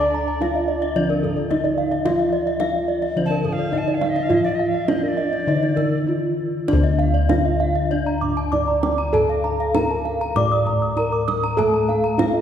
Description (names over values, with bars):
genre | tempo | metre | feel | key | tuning
Balinese gamelan | 98-110 BPM | 4/4 | straight | D pelog | A4 = 441 Hz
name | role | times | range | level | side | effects
gamelan-type bronze metallophone | melody | 0.0-12.4 s | D4 to D5 | -24 LUFS | right 1 dB | none
breathy alto recorder | second line | 0.0-6.0 s | D5 to A5-25c | -30 LUFS | right 1 dB | none
gamelan-type bronze metallophone | accompaniment | 0.0-6.7, 11.6-12.4 s | D3 to D4 | -31 LUFS | left 3 dB | none
gamelan-type bronze metallophone | arpeggios | 0.0-12.3 s | Bb4-20c to Eb6+20c | -26 LUFS | left 5 dB | none
gamelan-type bossed gongs | bass | 0.0-12.4 s | D2 to D5 | -22 LUFS | left 1 dB | none
gamelan-type bronze metallophone | arpeggios | 0.1-12.4 s | A4-30c to Eb6+20c | -27 LUFS | right 5 dB | none
kendang | percussion | 0.4-12.3 s | none | -28 LUFS | right 4 dB | none
room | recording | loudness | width
wet church reverb, RT60 3.1 s | recorded in a church or concert hall | -18 LUFS | side -9 dB against mid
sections
0.0-6.7 A section; 6.7-12.4 B section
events
none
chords
none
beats
0.42 0.96 1.51 | 2.06 2.61 3.17 3.73 | 4.30 4.89 5.48 6.08 | 6.68 7.29 7.91 8.52 | 9.13 9.74 10.36 10.97 | 11.58 12.19